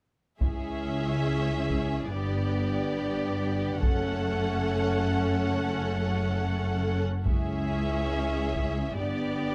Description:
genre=cinematic, epic orchestral film score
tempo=70 BPM (dotted quarters)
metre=6/8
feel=straight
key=F# minor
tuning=A4 = 440 Hz
part: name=warm symphonic violin section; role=melody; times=0.4-9.5 s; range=D5 to F#5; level=-38 LUFS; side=equal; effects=none
part: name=warm symphonic violin section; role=second line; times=0.4-9.5 s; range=G4 to A4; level=-38 LUFS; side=equal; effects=none
part: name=clear symphonic viola section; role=accompaniment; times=0.4-9.5 s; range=B3 to C#4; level=-39 LUFS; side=equal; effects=none
part: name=dark French horn section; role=sustained chords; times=0.4-9.5 s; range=G#3 to E4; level=-36 LUFS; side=equal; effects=none
part: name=warm symphonic cello section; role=bass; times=0.4-9.5 s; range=C#2 to G2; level=-35 LUFS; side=equal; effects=none
part: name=warm symphonic double bass section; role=bass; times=0.4-9.5 s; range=F#1 to C#2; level=-35 LUFS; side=equal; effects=none
part: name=taiko ensemble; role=drums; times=0.4-8.8 s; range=none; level=-31 LUFS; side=equal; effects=none
room=light reverb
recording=close, detailed microphones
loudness=-28 LUFS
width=mono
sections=0.4-9.5 A section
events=none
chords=0.4 C#m; 2.1 G; 3.8 F#m; 7.3 C#m; 9.0 G

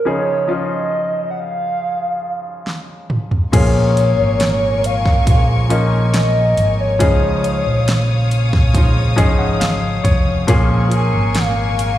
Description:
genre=pop ballad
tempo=69 BPM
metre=4/4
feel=straight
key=Bb minor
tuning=A4 = 441 Hz
part: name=hollow clarinet-like synth lead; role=melody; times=0.0-12.0 s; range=Db5 to Ab5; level=-19 LUFS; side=equal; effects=chorus, phaser, plate reverb, slapback echo
part: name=clear concert grand piano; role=accompaniment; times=0.0-12.0 s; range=Bb2 to Ab5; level=-21 LUFS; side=left 2 dB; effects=plate reverb, slapback echo
part: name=pop drum kit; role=drums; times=2.7-12.0 s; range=crash cymbal, hi-hat, kick drum, snare drum, toms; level=-16 LUFS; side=equal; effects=none
part: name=clear studio string section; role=sustained chords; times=3.5-12.0 s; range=Bb4 to Eb6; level=-26 LUFS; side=left 3 dB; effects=plate reverb
part: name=nylon-string guitar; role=arpeggios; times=3.5-12.0 s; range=Bb2 to F4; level=-25 LUFS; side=right 3 dB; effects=plate reverb
part: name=fingered electric bass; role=bass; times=3.5-12.0 s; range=F1 to Db2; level=-17 LUFS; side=equal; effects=none
room=light reverb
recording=live gig heard through the venue's PA, recital hall reverb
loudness=-13 LUFS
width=side -13 dB against mid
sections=0.0-3.5 A section; 3.5-12.0 B section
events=drum fill 2.7-3.5; grand piano fill 8.8-10.5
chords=0.1 Dbadd9; 3.5 Bbm7; 7.0 Dbadd9; 10.5 Bbm7

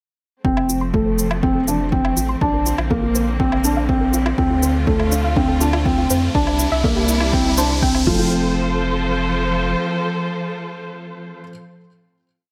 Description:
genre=piano and strings electronica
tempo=122 BPM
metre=4/4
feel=straight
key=F major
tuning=A4 = 439 Hz
part: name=rich studio string section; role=sustained chords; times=0.4-11.4 s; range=C3 to C5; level=-27 LUFS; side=equal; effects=sidechain pumping
part: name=soft round pluck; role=arpeggios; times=0.4-8.5 s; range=D4 to C6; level=-30 LUFS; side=equal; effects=chorus, sidechain pumping, digital delay
part: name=felt-muted upright piano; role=riff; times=0.4-11.5 s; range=F3 to F4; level=-22 LUFS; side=equal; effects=digital delay
part: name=warm sub bass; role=bass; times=0.4-9.8 s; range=F1 to F2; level=-25 LUFS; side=equal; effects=sidechain pumping
part: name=electronic kick drum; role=drums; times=0.4-8.2 s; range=none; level=-25 LUFS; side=equal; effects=overdrive
part: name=riser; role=sound effects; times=3.0-8.3 s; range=none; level=-31 LUFS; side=equal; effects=none
part: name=woodblock and shaker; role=drums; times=0.6-8.0 s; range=none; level=-29 LUFS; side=equal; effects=overdrive, high-pass filter on perc
room=moderate recital hall reverb, RT60 1.3 s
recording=none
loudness=-19 LUFS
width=mono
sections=0.4-8.3 build; 8.3-12.3 final hit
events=build-up 0.4-8.3; filter sweep on synth arpeggio sound 0.4-8.3; riser 3.0-8.3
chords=0.4 F; 2.4 Bbadd9; 4.4 Dm7; 6.3 Cadd9; 8.1 F

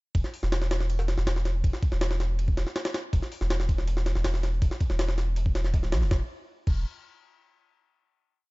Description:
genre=drum and bass, jungle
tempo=161 BPM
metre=4/4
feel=straight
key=unclear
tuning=A4 = 440 Hz
part: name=soft dub sub bass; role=bass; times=0.1-6.8 s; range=D1 to B1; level=-26 LUFS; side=equal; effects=none
part: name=jungle sampler-style drum kit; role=drums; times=0.1-6.7 s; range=crash cymbal, hi-hat, kick drum, ride cymbal, snare drum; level=-28 LUFS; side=equal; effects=small room reverb
part: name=crunchy breakbeat drum kit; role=drums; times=3.1-6.0 s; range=hi-hat, snare drum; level=-50 LUFS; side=left 1 dB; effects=none
room=small room ambience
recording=dark, warm production, nothing above 7.7 kHz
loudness=-25 LUFS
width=side -24 dB against mid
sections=0.1-6.1 drop; 6.1-7.6 final note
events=drop 0.1-6.1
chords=none

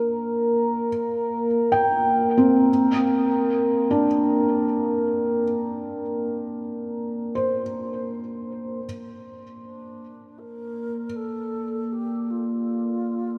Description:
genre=ambient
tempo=free time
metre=none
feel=none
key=Bb major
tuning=A4 = 440 Hz
part: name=felt-muted upright piano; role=arpeggios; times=0.0-11.1 s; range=C4 to G5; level=-25 LUFS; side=equal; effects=tape echo
part: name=analog drone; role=drone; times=0.0-13.4 s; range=Bb3 to D5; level=-27 LUFS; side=equal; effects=chorus
part: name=mellow wooden-headed alto flute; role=melody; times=9.6-13.4 s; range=D4 to Bb4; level=-37 LUFS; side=equal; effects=tape echo
room=wet cathedral reverb, RT60 6.4 s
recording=in a vast, echoing space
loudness=-24 LUFS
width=mono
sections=0.0-8.8 A section; 8.8-13.4 B section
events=none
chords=0.0 Bb69; 8.8 Bb

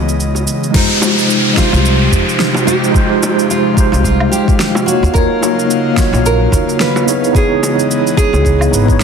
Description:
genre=sunset chillout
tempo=109 BPM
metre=4/4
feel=swing 58% on 16ths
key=unclear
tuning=A4 = 440 Hz
part: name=nylon-string guitar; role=melody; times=0.0-9.0 s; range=Eb4 to B4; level=-19 LUFS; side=right 1 dB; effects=digital delay
part: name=mellow tine electric piano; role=accompaniment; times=0.0-9.0 s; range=Ab3 to Eb5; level=-15 LUFS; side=moving between left 5 dB and right 5 dB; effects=medium stereo tremolo, auto-pan, digital delay
part: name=airy breathy pad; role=sustained chords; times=0.0-9.0 s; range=C3 to F5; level=-20 LUFS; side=equal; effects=chorus
part: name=upright bass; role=bass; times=0.0-9.0 s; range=Ab1 to F2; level=-14 LUFS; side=equal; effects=none
part: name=deep house drum kit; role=drums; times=0.1-9.0 s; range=cabasa, crash cymbal, snare drum, woodblock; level=-20 LUFS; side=right 1 dB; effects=overdrive
part: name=bongos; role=percussion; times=0.3-8.4 s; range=none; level=-24 LUFS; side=right 3 dB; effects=none
part: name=electronic kick drum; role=drums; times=0.7-9.0 s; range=none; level=-14 LUFS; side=equal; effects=none
part: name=downlifter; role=sound effects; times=0.7-5.1 s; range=none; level=-18 LUFS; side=equal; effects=none
room=moderate plate reverb, RT60 2.0 s, digital ambience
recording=dense, heavily limited modern master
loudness=-10 LUFS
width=side -6 dB against mid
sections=0.7-9.0 A section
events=none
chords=0.0 Dbm9; 0.7 Fm9; 4.9 Ebm9; 7.1 Dbm9

